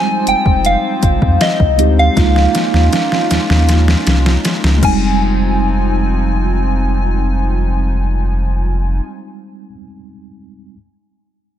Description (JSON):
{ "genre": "contemporary R&B", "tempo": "79 BPM", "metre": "4/4", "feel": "straight", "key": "F minor", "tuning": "A4 = 441 Hz", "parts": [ { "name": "soft synth bell", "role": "melody", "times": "0.0-9.7 s", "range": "Eb5 to Ab5", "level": "-18 LUFS", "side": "left 1 dB", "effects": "chorus, phaser, tape echo" }, { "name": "mellow tine electric piano", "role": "accompaniment", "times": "0.0-10.8 s", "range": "G3 to G4", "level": "-20 LUFS", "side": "right 2 dB", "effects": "medium stereo tremolo" }, { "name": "hollow soft pad", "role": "sustained chords", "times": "0.0-9.0 s", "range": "F3 to Ab5", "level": "-22 LUFS", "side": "equal", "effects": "chorus" }, { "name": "warm sub bass", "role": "bass", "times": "0.3-9.0 s", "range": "F1 to F2", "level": "-14 LUFS", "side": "equal", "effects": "none" }, { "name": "smooth R&B drum kit", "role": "drums", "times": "0.3-5.0 s", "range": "crash cymbal, hi-hat, kick drum, snare drum", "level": "-16 LUFS", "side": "equal", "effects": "overdrive" }, { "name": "celesta", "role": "texture", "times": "4.8-9.7 s", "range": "F6", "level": "-39 LUFS", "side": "right 3 dB", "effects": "none" } ], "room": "little or no reverb", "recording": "none", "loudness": "-12 LUFS", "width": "side -11 dB against mid", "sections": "0.0-5.2 A section; 5.2-8.2 B section", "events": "drum fill 2.2-5.2", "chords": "0.0 Fm9; 2.2 Db69; 4.8 Fm9" }